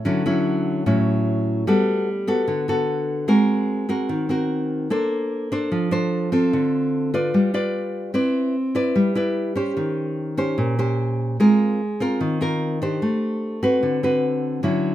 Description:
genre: bossa nova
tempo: 148 BPM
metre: 4/4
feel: straight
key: unclear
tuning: A4 = 442 Hz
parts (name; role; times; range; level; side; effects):
- nylon-string guitar; solo; 0.0-14.9 s; A2 to D5; -19 LUFS; equal; none
room: little or no reverb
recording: minimal, uncompressed stereo recording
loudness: -19 LUFS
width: side -13 dB against mid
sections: 0.0-1.7 A section; 1.7-14.6 B section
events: none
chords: 0.0 Dmaj9; 1.7 Gmaj9; 3.3 Ab9; 4.9 Bbmaj9; 6.5 Dm7; 7.3 G7; 8.1 Cmaj9; 9.8 Eb6; 11.4 Ab69; 13.0 Am11; 13.8 D6

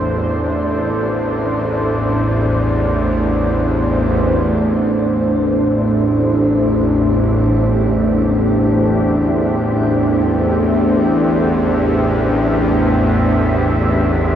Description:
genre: dark ambient drone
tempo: free time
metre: none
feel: none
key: A minor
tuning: A4 = 438 Hz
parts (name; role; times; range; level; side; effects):
- deep dark ambient pad; sustained chords; 0.0-14.4 s; A3 to E5; -16 LUFS; equal; chorus, built-in reverb, shimmer reverb
- bowed-like drone; drone; 0.0-14.4 s; A1 to E2; -17 LUFS; equal; built-in reverb
- wind-like tuned noise texture; texture; 5.4-14.4 s; E5; -33 LUFS; right 2 dB; built-in reverb, shimmer reverb
room: wet huge ambient reverb, RT60 8.7 s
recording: none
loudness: -13 LUFS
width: side -9 dB against mid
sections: 0.0-4.2 A section; 4.2-14.4 B section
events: fade-in on synth texture 4.2-14.4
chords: 0.0 Am

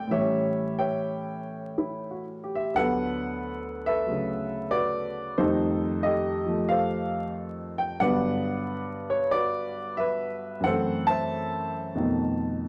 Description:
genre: solo jazz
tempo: 91 BPM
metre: 4/4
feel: swing 69% on 8ths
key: D major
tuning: A4 = 440 Hz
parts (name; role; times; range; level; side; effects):
- warm grand piano; solo; 0.0-12.7 s; D2 to A5; -28 LUFS; equal; none
room: wet club reverb, RT60 0.6 s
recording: vinyl crackle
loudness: -28 LUFS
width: mono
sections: 0.0-2.8 A section; 2.8-12.7 B section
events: none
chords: 0.1 A7; 2.8 D6; 5.4 F9; 8.0 Gmaj7; 10.6 F#m7b5; 11.9 F7#11

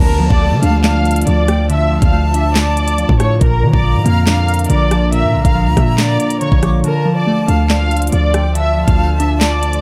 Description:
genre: hip hop, drill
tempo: 140 BPM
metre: 4/4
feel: half-time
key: D minor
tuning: A4 = 440 Hz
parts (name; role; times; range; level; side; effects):
- warm studio violin section; melody; 0.0-9.8 s; Bb4 to F6; -22 LUFS; equal; none
- breathy jazz flute; second line; 0.0-9.8 s; G5 to D6; -26 LUFS; equal; tape echo
- glassy digital keys; accompaniment; 0.0-9.8 s; Bb2 to D5; -20 LUFS; equal; chorus
- deep dark ambient pad; sustained chords; 0.8-9.8 s; D3 to F4; -28 LUFS; equal; chorus, built-in reverb
- hard-hitting 808-style bass; bass; 0.0-9.8 s; Bb1 to F3; -18 LUFS; equal; none
- downlifter; sound effects; 0.0-3.4 s; none; -31 LUFS; equal; none
- drill drum kit; drums; 0.3-9.8 s; handclaps, hi-hat, kick drum, rim click, snare drum; -19 LUFS; equal; none
room: digital ambience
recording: dark, warm production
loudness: -14 LUFS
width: mono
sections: 0.0-9.8 A section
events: kick muted 6.8-7.3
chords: 0.0 Dm; 3.4 Bb; 6.8 Dm

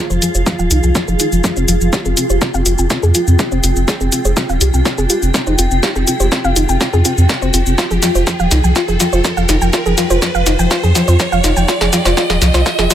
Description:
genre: melodic techno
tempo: 123 BPM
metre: 4/4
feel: straight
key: F minor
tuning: A4 = 440 Hz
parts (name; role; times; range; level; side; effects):
- soft octave-layered synth lead; melody; 0.0-12.9 s; F3 to Ab4; -19 LUFS; left 1 dB; chorus, tremolo, sidechain pumping, digital delay
- soft round pluck; arpeggios; 0.0-12.9 s; F4 to G5; -21 LUFS; right 1 dB; chorus, sidechain pumping, digital delay
- riser; sound effects; 1.8-12.9 s; none; -24 LUFS; right 1 dB; none
- granular cloud pad; texture; 0.0-12.9 s; F4 to G5; -22 LUFS; equal; built-in reverb, sidechain pumping
- round analog bass; bass; 0.1-12.9 s; Eb1 to F2; -14 LUFS; equal; sidechain pumping
- punchy analog drum machine; drums; 0.1-12.9 s; hi-hat, shaker, snare drum; -18 LUFS; left 1 dB; high-pass filter on snare, high-pass filter on perc, high-pass filter on hats
- electronic kick drum; drums; 0.5-12.8 s; none; -19 LUFS; equal; overdrive, high-pass filter on kick
room: light reverb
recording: none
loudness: -11 LUFS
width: side -11 dB against mid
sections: 0.0-12.9 A section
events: build-up 0.0-12.9; drum fill 0.0-12.9; filter sweep on synth arpeggio sound 0.0-12.9; filter sweep on soft synth lead 0.0-12.9; riser 1.8-12.9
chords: 0.0 Fmadd9

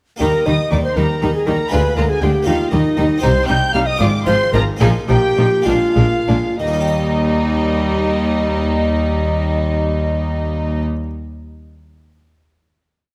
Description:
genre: classical, baroque-style concerto movement with solo episodes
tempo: 63-80 BPM (dotted quarters)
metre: 6/8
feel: straight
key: Eb major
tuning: A4 = 438 Hz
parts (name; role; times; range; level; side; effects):
- dark studio violin section; melody; 0.2-10.8 s; Eb5 to G6; -28 LUFS; equal; none
- mellow hollow tenor recorder; melody; 0.2-10.8 s; Eb4 to G5; -22 LUFS; equal; none
- warm chamber violin section; second line; 0.2-10.8 s; D4 to F4; -29 LUFS; equal; none
- harpsichord; accompaniment; 0.2-11.1 s; Ab2 to Eb5; -29 LUFS; equal; none
- warm chamber viola section; accompaniment; 0.2-10.8 s; F3 to Ab3; -27 LUFS; equal; none
- dark chamber cello section; bass; 0.2-10.8 s; Eb2 to Eb3; -24 LUFS; equal; none
- rich chamber double bass section; bass; 0.2-10.8 s; Ab1 to Eb2; -22 LUFS; equal; none
room: moderate recital hall reverb, RT60 1.6 s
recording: close, detailed microphones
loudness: -17 LUFS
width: mono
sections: 0.2-6.6 ritornello; 6.6-10.4 final chord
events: slowing down 2.5-6.6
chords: 0.2 Eb; 1.7 Ddim; 2.5 Eb; 3.2 Cm; 4.0 Fm/Ab; 4.8 Bbsus4; 5.7 Bb7; 6.6 Eb

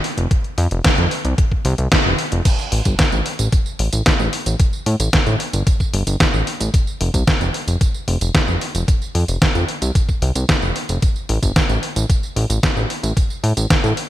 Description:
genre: italo disco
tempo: 112 BPM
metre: 4/4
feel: straight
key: unclear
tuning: A4 = 437 Hz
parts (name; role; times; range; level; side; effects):
- detuned 8-bit digital drum machine; drums; 0.0-14.1 s; crash cymbal, hi-hat, snare drum, tambourine; -20 LUFS; equal; gated reverb
- fat analog bass; bass; 0.2-13.9 s; F1 to A2; -19 LUFS; equal; none
- electronic kick drum; drums; 0.3-13.8 s; none; -18 LUFS; equal; none
room: light reverb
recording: bright 1980s-style digital production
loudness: -15 LUFS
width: side -14 dB against mid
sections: 0.0-2.5 A section; 2.5-14.1 B section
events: none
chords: none

